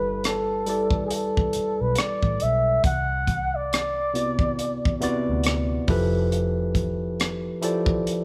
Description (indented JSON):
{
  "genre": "R&B, neo-soul",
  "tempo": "69 BPM",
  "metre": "4/4",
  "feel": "swing 59% on 16ths",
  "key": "G mixolydian",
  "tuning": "A4 = 438 Hz",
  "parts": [
    { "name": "breathy flugelhorn", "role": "melody", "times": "0.0-5.3 s", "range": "Ab4 to F#5", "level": "-28 LUFS", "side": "equal", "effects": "none" },
    { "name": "barky tine electric piano", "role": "accompaniment", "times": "0.0-8.2 s", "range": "C3 to D5", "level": "-28 LUFS", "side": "equal", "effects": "none" },
    { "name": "vintage muted fingered electric bass", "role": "bass", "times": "0.0-7.5 s", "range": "F1 to D2", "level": "-31 LUFS", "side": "equal", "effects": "none" },
    { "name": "tight funk drum kit", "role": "drums", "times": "0.2-8.2 s", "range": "hi-hat, kick drum, rim click", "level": "-28 LUFS", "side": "equal", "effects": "none" }
  ],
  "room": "moderate large studio reverb, RT60 1.4 s",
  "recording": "band playing live in one room",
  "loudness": "-24 LUFS",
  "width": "mono",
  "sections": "0.0-8.2 A section",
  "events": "none",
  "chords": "0.0 G69; 2.8 Cmaj9#11; 5.9 Fmaj9#11"
}